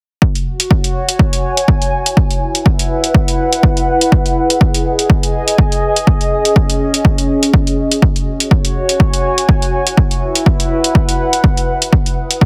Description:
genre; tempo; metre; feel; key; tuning
piano house; 123 BPM; 4/4; swing 56% on 16ths; E major; A4 = 440 Hz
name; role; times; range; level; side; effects
electronic kick drum; drums; 0.2-12.5 s; none; -15 LUFS; equal; overdrive
warbly tape-like pad; texture; 0.6-12.5 s; C#4 to D#6; -19 LUFS; equal; chorus, built-in reverb, sidechain pumping
electronic hi-hat; drums; 0.4-12.4 s; none; -19 LUFS; equal; none
room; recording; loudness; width
light reverb; heavily compressed radio sound; -14 LUFS; mono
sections
0.2-12.5 A section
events
none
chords
0.2 F#5; 1.9 E; 4.1 G#m7; 6.1 C#5; 8.0 F#5; 9.7 E; 11.9 G#m7 (rootless)

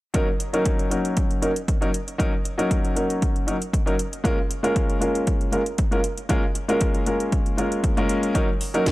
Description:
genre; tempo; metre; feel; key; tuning
nu-disco, nu disco; 117 BPM; 4/4; swing 53% on 16ths; Eb minor; A4 = 440 Hz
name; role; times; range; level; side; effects
warm baby grand piano; accompaniment; 0.1-8.9 s; Gb3 to Bb4; -23 LUFS; equal; sidechain pumping, tape echo
electronic kick drum; drums; 0.1-8.9 s; none; -23 LUFS; equal; overdrive
house drum kit; drums; 0.1-8.9 s; hi-hat, snare drum; -31 LUFS; equal; overdrive
room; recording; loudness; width
little or no reverb; dry, gritty hardware recording; -20 LUFS; side -18 dB against mid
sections
0.1-8.9 A section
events
none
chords
0.1 Ebm7; 4.0 Bbm7; 8.4 Ebm7

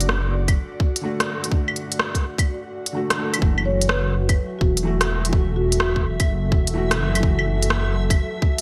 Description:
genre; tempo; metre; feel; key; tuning
future garage; 126 BPM; 4/4; swing 66% on 16ths; F# minor; A4 = 439 Hz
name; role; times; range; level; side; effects
felt-muted upright piano; accompaniment; 0.0-8.6 s; D3 to A4; -32 LUFS; equal; sidechain pumping, delay
airy breathy pad; sustained chords; 0.0-8.6 s; F#3 to E5; -33 LUFS; equal; chorus, vintage 12-bit sampler grit, sidechain pumping
dark detuned saw bass; bass; 0.0-0.6, 3.4-8.2 s; E1 to F#1; -25 LUFS; equal; sidechain pumping
organic electronic drum kit; drums; 0.0-8.6 s; claves, hi-hat, rim click; -26 LUFS; equal; studio ambience, gated reverb
electronic kick drum; drums; 0.5-8.5 s; none; -22 LUFS; equal; studio ambience
backwards swelling texture; texture; 3.4-8.6 s; E5; -39 LUFS; equal; built-in reverb, lush chorus
marimba with soft mallets; melody; 3.7-6.3 s; F#4 to C#5; -30 LUFS; equal; digital delay
room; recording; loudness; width
light reverb, digital ambience; bright 1980s-style digital production, vinyl crackle; -21 LUFS; mono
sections
0.0-8.6 A section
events
none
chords
0.0 D; 3.4 F#m7

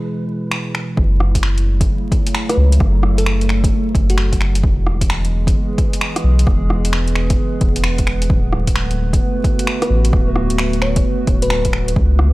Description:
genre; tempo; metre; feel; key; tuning
future garage; 131 BPM; 4/4; swing 64% on 16ths; F# minor; A4 = 443 Hz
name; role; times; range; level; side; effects
warbly tape-like pad; sustained chords; 0.0-12.3 s; B2 to B4; -23 LUFS; right 1 dB; chorus, built-in reverb, sidechain pumping
wind-like tuned noise texture; texture; 0.0-1.0 s; B4; -41 LUFS; right 4 dB; built-in reverb
deep house drum kit; drums; 0.5-12.3 s; finger snaps, hi-hat, rim click; -23 LUFS; equal; overdrive, studio reverb
soft dub sub bass; bass; 1.0-12.3 s; D1 to C#2; -16 LUFS; equal; tube saturation, sidechain pumping
electronic kick drum; drums; 1.0-12.1 s; none; -17 LUFS; equal; overdrive, studio reverb
bell-like FM electric piano; melody; 2.5-4.6, 9.8-11.9 s; F#4 to C#5; -25 LUFS; left 1 dB; chorus, cassette tape, analog delay
room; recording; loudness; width
little or no reverb; dry, gritty hardware recording, vinyl crackle; -14 LUFS; side -19 dB against mid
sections
1.0-12.3 A section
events
none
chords
0.0 E; 1.0 F#m7; 4.6 E; 8.3 Bm7/D

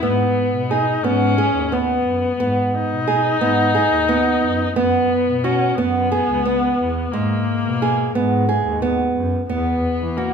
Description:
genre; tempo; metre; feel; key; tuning
contemporary instrumental, chamber music in an uneven meter; 177 BPM (eighths); 7/8; straight; G# minor; A4 = 442 Hz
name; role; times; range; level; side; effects
warm viola; second line; 0.0-10.3 s; G#3 to D#4; -21 LUFS; left 6 dB; none
nylon-string guitar; arpeggios; 0.0-10.3 s; G#3 to G#4; -19 LUFS; right 4 dB; none
rich double bass; bass; 0.0-10.3 s; C#2 to E3; -24 LUFS; left 1 dB; none
room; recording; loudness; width
moderate recital hall reverb, RT60 1.7 s; minimal, uncompressed stereo recording; -16 LUFS; side -6 dB against mid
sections
0.0-9.5 A section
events
none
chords
0.0 G#m7; 4.8 F#7sus4; 7.1 G#m7; 9.5 Esus2

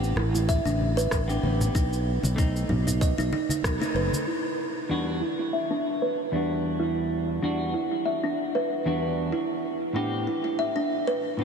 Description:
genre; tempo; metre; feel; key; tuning
organic downtempo; 95 BPM; 4/4; swing 55% on 16ths; E minor; A4 = 440 Hz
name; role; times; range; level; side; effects
clean electric guitar; accompaniment; 0.0-11.4 s; E2 to G4; -32 LUFS; right 1 dB; lush chorus, sidechain pumping, diffuse ambient delay
sustaining fretless electric bass; bass; 0.0-4.1 s; F#1 to B1; -26 LUFS; equal; sidechain pumping
electronic shaker and rim click; drums; 0.0-4.2 s; none; -36 LUFS; equal; none
kalimba; arpeggios; 0.2-11.4 s; D4 to E5; -27 LUFS; right 1 dB; low-pass filter, diffuse ambient delay
congas; percussion; 0.2-4.2 s; none; -35 LUFS; left 1 dB; none
electronic kick drum; drums; 0.5-3.8 s; none; -25 LUFS; equal; none
room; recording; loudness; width
wet huge ambient reverb, RT60 7.5 s; dreamy mix soaked in reverb; -24 LUFS; side -6 dB against mid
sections
0.0-4.3 A section; 4.3-11.4 B section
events
band accent 3.6-4.0; filter sweep on kalimba 4.3-11.4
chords
0.0 Am7; 1.8 B7b9; 4.3 Em7; 9.3 Am7

